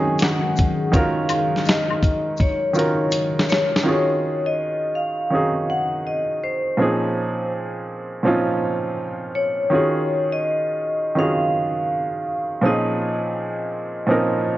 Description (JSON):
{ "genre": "lo-fi hip hop", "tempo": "82 BPM", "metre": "4/4", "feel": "swing 64% on 16ths", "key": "Eb minor", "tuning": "A4 = 440 Hz", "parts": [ { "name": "vibraphone with hard mallets", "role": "melody", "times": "0.0-14.6 s", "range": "C5 to Ab5", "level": "-23 LUFS", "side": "left 1 dB", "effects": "low-pass filter" }, { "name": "warm upright piano", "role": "accompaniment", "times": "0.0-14.6 s", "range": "Bb2 to Bb4", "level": "-22 LUFS", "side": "right 2 dB", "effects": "low-pass filter" }, { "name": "dark analog pad", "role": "sustained chords", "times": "0.0-3.8 s", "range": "Eb3 to Ab4", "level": "-26 LUFS", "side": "left 2 dB", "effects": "chorus, phaser, low-pass filter" }, { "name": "dusty soul sampler-style drum kit", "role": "drums", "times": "0.2-3.9 s", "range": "hi-hat, kick drum, snare drum", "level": "-20 LUFS", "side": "equal", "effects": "none" }, { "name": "maracas and woodblock", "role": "percussion", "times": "0.2-3.7 s", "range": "none", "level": "-31 LUFS", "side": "left 6 dB", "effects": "none" } ], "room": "light reverb, small room ambience", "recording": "cassette tape, nothing above 7.5 kHz", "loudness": "-19 LUFS", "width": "side -15 dB against mid", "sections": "0.0-3.9 A section; 3.9-14.6 B section", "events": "drum fill 2.4-3.9", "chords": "0.0 Ebm11; 6.8 Bbm11; 9.7 Ebm11; 12.6 Bbm11" }